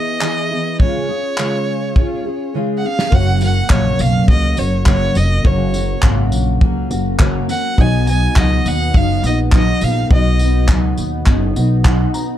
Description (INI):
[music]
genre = acoustic pop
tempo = 103 BPM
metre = 4/4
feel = swing 55% on 16ths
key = F# major from 3.1 s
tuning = A4 = 438 Hz
[part]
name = rich violin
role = melody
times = 0.0-10.7 s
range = C#5 to G#5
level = -22 LUFS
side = right 2 dB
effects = none
[part]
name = fingerpicked steel-string acoustic guitar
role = accompaniment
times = 0.0-12.4 s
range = F#2 to G#4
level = -19 LUFS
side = equal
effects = double-tracked left and right
[part]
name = natural country drum kit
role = drums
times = 0.2-12.3 s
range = handclaps, kick drum, snare drum, tambourine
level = -15 LUFS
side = equal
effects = none
[part]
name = dark upright piano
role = accompaniment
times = 3.1-12.4 s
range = A#3 to A#5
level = -29 LUFS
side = left 7 dB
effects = none
[part]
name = upright bass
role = bass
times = 3.1-12.0 s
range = E#1 to D#2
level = -17 LUFS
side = equal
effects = none
[sound]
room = little or no reverb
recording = dark, warm production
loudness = -13 LUFS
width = side -11 dB against mid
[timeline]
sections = 0.0-3.1 A section; 3.1-12.4 B section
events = drum fill 2.5-3.1; upright piano fill 11.6-12.4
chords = 0.0 E; 0.8 C#; 3.1 F#; 7.8 B